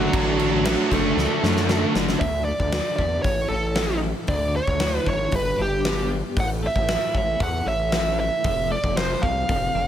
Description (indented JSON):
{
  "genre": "quiet-loud alternative rock",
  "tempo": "115 BPM",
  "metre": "4/4",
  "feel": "straight",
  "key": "A major",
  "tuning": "A4 = 440 Hz",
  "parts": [
    { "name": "bluesy overdriven lead guitar", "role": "melody", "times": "0.0-9.9 s", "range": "F#3 to F#5", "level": "-24 LUFS", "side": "right 2 dB", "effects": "distortion" },
    { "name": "fuzz guitar", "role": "riff", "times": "0.0-2.2 s", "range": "D3 to D4", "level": "-28 LUFS", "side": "left 10 dB", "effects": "distortion" },
    { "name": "thick fuzz guitar", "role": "riff", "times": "0.0-2.2 s", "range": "D3 to D4", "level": "-26 LUFS", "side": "right 12 dB", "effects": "distortion" },
    { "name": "thick fuzz guitar", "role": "riff", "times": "0.0-2.2 s", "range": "D3 to D4", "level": "-28 LUFS", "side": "left 1 dB", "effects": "distortion" },
    { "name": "gritty driven synth bass", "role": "bass", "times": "0.0-9.9 s", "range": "F1 to F#2", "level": "-27 LUFS", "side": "left 1 dB", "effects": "none" },
    { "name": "huge arena drum kit", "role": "drums", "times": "0.1-9.6 s", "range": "crash cymbal, hi-hat, kick drum, snare drum", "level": "-26 LUFS", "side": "left 1 dB", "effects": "none" },
    { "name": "twelve-string electric guitar", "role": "arpeggios", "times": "2.2-9.9 s", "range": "G2 to F#4", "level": "-32 LUFS", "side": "left 2 dB", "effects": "tremolo" }
  ],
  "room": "small room ambience",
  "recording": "none",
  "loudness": "-20 LUFS",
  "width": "side -10 dB against mid",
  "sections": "0.0-2.2 A section; 2.2-9.9 B section",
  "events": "drum fill 1.2-2.2",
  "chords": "0.0 D/F#; 2.2 Dadd9; 3.2 A; 4.3 Dsus2; 5.3 G; 6.4 A; 8.5 F",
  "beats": "| 0.13 0.65 1.17 1.69 | 2.21 2.73 3.25 3.77 | 4.29 4.81 5.33 5.85 | 6.37 6.89 7.41 7.93 | 8.45 8.97 9.49"
}